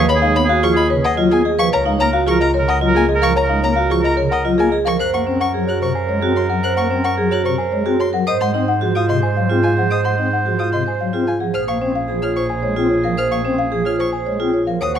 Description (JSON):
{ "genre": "classical, minimalist pattern music", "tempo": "110 BPM", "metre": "3/4", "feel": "straight", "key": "Gb lydian from 5.0 s", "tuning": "A4 = 438 Hz", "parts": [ { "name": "buzzing marimba with medium mallets", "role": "melody", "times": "0.0-15.0 s", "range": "G#4 to Ab5", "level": "-21 LUFS", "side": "left 7 dB", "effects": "none" }, { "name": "clear oboe", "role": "second line", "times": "0.0-15.0 s", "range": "Gb4 to C5", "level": "-24 LUFS", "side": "right 4 dB", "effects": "none" }, { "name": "pipe organ, strings celeste", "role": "accompaniment", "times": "0.0-15.0 s", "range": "C3 to C4", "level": "-24 LUFS", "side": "left 1 dB", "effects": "none" }, { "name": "vibraphone with hard mallets", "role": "arpeggios", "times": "0.0-15.0 s", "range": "Db4 to C5", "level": "-20 LUFS", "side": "right 4 dB", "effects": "none" }, { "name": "warm violin", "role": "arpeggios", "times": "0.0-15.0 s", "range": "D#5 to Gb6", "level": "-24 LUFS", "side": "left 2 dB", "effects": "none" }, { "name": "rich double bass", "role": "bass", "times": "0.0-15.0 s", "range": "Bb1 to Ab2", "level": "-23 LUFS", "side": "right 2 dB", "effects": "none" } ], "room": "light reverb", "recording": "close, detailed microphones", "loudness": "-15 LUFS", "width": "side -9 dB against mid", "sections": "0.0-5.0 A section; 5.0-15.0 B section", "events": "none", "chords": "0.0 B69/D#; 1.7 F#69/C#; 5.0 Gbadd9; 8.3 Ab7; 11.5 Bbm7" }